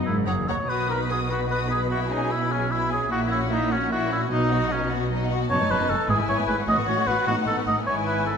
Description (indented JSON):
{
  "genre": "quick classical-period movement for symphony orchestra",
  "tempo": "100 BPM (dotted quarters)",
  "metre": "6/8",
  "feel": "rubato",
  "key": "B major",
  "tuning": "A4 = 440 Hz",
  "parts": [
    { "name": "rich studio viola section", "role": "accompaniment", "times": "0.0-8.4 s", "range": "F#3 to D#4", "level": "-33 LUFS", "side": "equal", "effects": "none" },
    { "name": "mellow French horn section", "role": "sustained chords", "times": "0.0-0.5 s", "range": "F#3 to A#3", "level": "-31 LUFS", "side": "left 8 dB", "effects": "none" },
    { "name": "warm oboe", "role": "second line", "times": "0.1-8.4 s", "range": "C#4 to D#5", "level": "-25 LUFS", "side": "equal", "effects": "none" },
    { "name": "rich studio cello section", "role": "bass", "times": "0.1-8.4 s", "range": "D#2 to B2", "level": "-29 LUFS", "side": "right 3 dB", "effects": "none" },
    { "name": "warm studio double bass section", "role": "bass", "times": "0.1-8.4 s", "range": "F#1 to B1", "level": "-30 LUFS", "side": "right 3 dB", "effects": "none" },
    { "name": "rich studio violin section", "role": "melody", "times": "0.3-8.4 s", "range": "D#5 to D#6", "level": "-33 LUFS", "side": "left 5 dB", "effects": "none" },
    { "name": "rich studio violin section", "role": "second line", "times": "0.3-8.4 s", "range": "D#4 to F#5", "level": "-30 LUFS", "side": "left 5 dB", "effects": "none" }
  ],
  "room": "moderate concert hall reverb, RT60 1.8 s",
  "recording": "minimal, uncompressed stereo recording",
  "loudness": "-21 LUFS",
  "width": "side -6 dB against mid",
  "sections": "0.7-8.4 A section",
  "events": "none",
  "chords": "0.1 F#; 0.7 B; 1.9 C#m7/B; 3.1 F#7/A#; 4.3 B; 5.5 B7/F#; 6.1 E/G#; 6.7 F#m/A; 7.3 B7/A; 7.9 E/G#"
}